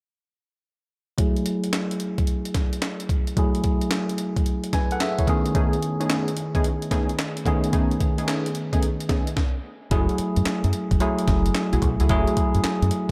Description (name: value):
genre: R&B, new jack swing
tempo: 110 BPM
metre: 4/4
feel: swing 66% on 16ths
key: F# dorian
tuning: A4 = 440 Hz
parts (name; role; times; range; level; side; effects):
- bell-like tine electric piano; accompaniment; 1.2-13.1 s; D#3 to G#5; -28 LUFS; equal; low-pass filter
- breakbeat sampler-style drum kit; drums; 1.2-13.1 s; handclaps, hi-hat, kick drum, snare drum; -26 LUFS; equal; none
- funky polysynth comp; stabs; 5.5-12.4 s; A3 to G#4; -32 LUFS; equal; chorus, low-pass filter, diffuse ambient delay
- deep dub fingered electric bass; bass; 9.9-12.9 s; F#1 to F#2; -25 LUFS; equal; none
room: moderate plate reverb, RT60 2.6 s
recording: dreamy mix soaked in reverb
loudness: -23 LUFS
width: mono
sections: 1.2-9.9 A section; 9.9-13.1 B section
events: filter sweep 1.2-9.9; stop 9.4-9.9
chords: 1.2 F#m9; 5.3 Amaj9#11; 9.9 F#m9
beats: | 1.19 1.73 2.28 2.82 | 3.37 3.91 4.46 5.00 | 5.55 6.10 6.64 7.19 | 7.73 8.28 8.82 9.37 | 9.91 10.46 11.01 11.55 | 12.10 12.64